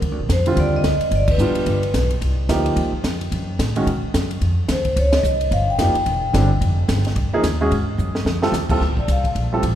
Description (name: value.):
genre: jazz, small-group swing and bop.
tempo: 218 BPM.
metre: 4/4.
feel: swing 60% on 8ths.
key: unclear.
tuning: A4 = 440 Hz.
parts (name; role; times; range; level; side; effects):
upright bass; bass; 0.0-9.8 s; E1 to B2; -20 LUFS; equal; none.
compact cocktail drum kit; drums; 0.0-9.7 s; crash cymbal, hi-hat, kick drum, ride cymbal, snare drum; -25 LUFS; equal; none.
vibraphone with medium mallets; melody; 0.3-2.1, 4.7-6.5, 9.0-9.3 s; B4 to G5; -23 LUFS; left 1 dB; none.
warm concert grand piano; accompaniment; 0.5-9.6 s; Bb2 to A4; -23 LUFS; right 2 dB; none.
room: moderate church reverb, RT60 3.7 s.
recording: recorded in a church or concert hall.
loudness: -17 LUFS.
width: side -11 dB against mid.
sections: 0.0-8.8 A section.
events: band accent 1.3, 5.1; drum fill 8.0-8.5.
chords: 0.0 Ebmaj7; 1.1 G7; 2.2 Cm9; 3.3 Gbm; 3.9 B5; 4.4 Dbmaj7; 5.5 F9sus4; 6.1 C; 6.6 Fm9; 7.7 Gbsus2; 8.3 F7; 8.8 Bbmaj7(no3).